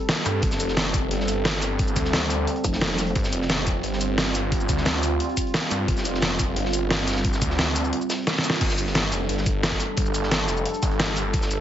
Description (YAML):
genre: dark technical drum and bass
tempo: 176 BPM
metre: 4/4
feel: straight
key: unclear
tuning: A4 = 440 Hz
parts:
  - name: dark analog pad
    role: sustained chords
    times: 0.0-11.6 s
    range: G3 to A4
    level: -28 LUFS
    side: right 2 dB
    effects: chorus, phaser, sidechain pumping
  - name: crunchy breakbeat drum kit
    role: drums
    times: 0.0-11.6 s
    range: hi-hat, snare drum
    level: -34 LUFS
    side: equal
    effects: none
  - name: dubstep drum kit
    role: drums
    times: 0.1-11.6 s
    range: crash cymbal, hi-hat, shaker, snare drum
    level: -25 LUFS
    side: equal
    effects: none
  - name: snarling distorted saw bass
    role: bass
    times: 0.3-11.6 s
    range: F1 to G2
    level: -26 LUFS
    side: equal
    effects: distortion, tube saturation, sidechain pumping
  - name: electronic kick drum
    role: drums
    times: 0.4-11.4 s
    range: none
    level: -26 LUFS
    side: equal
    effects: overdrive
  - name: pulsing pluck wobble bass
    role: bass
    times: 2.6-3.1 s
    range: F1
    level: -26 LUFS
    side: equal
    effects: chorus
room: light reverb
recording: heavily compressed radio sound, nothing above 7.8 kHz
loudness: -21 LUFS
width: side -11 dB against mid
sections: 0.0-8.6 A section; 8.6-11.6 A section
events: drop 0.0-8.6, 8.6-11.6; drum fill 8.3-8.6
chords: 0.0 G5